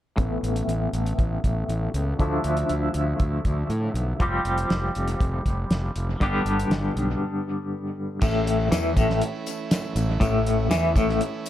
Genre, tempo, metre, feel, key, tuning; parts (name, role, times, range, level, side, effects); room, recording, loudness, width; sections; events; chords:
psychedelic rock; 120 BPM; 4/4; straight; A mixolydian; A4 = 440 Hz
twangy electric guitar; riff; 0.2-11.2 s; G2 to G4; -26 LUFS; left 2 dB; tremolo, low-pass filter
fuzz fingered electric bass; bass; 0.2-11.2 s; F1 to A2; -26 LUFS; equal; overdrive
cloth-damped thuddy drum kit; drums; 0.2-11.5 s; crash cymbal, hi-hat, kick drum, snare drum; -25 LUFS; equal; dub echo
combo organ; sustained chords; 8.2-11.5 s; E3 to E4; -32 LUFS; right 4 dB
tambourine; percussion; 8.2-11.5 s; -43 LUFS; left 14 dB; dub echo
light reverb, studio reverb; echo-heavy mix; -22 LUFS; side -12 dB against mid
0.2-8.2 A section; 8.2-11.5 B section
filter sweep on clean electric guitar 0.2-8.2; break 7.2-8.2
0.2 Aadd9; 2.2 Dmadd9; 4.2 Fsus2; 6.2 G; 8.2 A